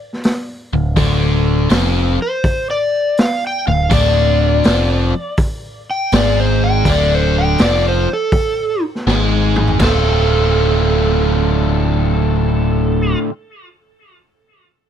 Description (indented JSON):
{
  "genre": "blues rock power trio and southern rock",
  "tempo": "82 BPM",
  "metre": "4/4",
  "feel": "swing 67% on 8ths",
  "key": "D minor",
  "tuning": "A4 = 440 Hz",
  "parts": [
    { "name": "raw garage drum kit", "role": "drums", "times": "0.1-10.0 s", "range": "crash cymbal, hi-hat, kick drum, snare drum, toms", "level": "-17 LUFS", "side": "equal", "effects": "none" },
    { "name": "biting overdriven guitar", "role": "riff", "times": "0.7-13.3 s", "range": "D2 to F4", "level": "-17 LUFS", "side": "left 1 dB", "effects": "none" },
    { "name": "growling picked electric bass", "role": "bass", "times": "0.7-13.1 s", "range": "D1 to G#1", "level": "-16 LUFS", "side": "equal", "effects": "overdrive" },
    { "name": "overdriven slide guitar", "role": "melody", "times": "2.2-13.2 s", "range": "A4 to G5", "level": "-19 LUFS", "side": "equal", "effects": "none" }
  ],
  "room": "light reverb",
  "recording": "dry, close 1970s-style studio recording",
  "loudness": "-13 LUFS",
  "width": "side -9 dB against mid",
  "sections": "0.0-9.8 A section; 9.8-12.7 B section",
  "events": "electric slide guitar solo 0.0-9.8; drum fill 9.1-9.8",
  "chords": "0.0 Dm; 9.8 Dm7",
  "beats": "0.23 | 0.97 1.71 2.45 3.19 | 3.92 4.66 5.39 6.13 | 6.87 7.60 8.33 9.07 | 9.80 10.53 11.26 11.99"
}